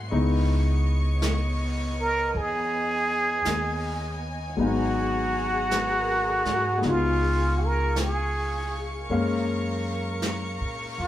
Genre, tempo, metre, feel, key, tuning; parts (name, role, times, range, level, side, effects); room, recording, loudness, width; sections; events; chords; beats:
jazz ballad; 53 BPM; 4/4; swing 66% on 8ths; A4 = 440 Hz
clear baby grand piano; accompaniment; 0.0-11.1 s; F#3 to E#5; -29 LUFS; left 3 dB
warm chamber string section; sustained chords; 0.0-11.1 s; B3 to C#6; -34 LUFS; left 1 dB
upright bass; bass; 0.0-11.1 s; G#1 to A#2; -28 LUFS; equal
jazz brush drum kit; drums; 0.1-11.1 s; brushed snare drum, hi-hat, snare drum; -35 LUFS; equal
trumpet with plunger mute; melody; 2.0-11.1 s; E#4 to A#4; -26 LUFS; right 1 dB
moderate large studio reverb, RT60 0.9 s; band playing live in one room; -23 LUFS; side -12 dB against mid
0.0-11.1 A section
0.1 C#m9; 4.6 G#m9; 6.8 C#7; 9.1 F#maj7
| 0.12 1.23 2.35 3.46 | 4.59 5.71 6.83 7.97 | 9.10 10.23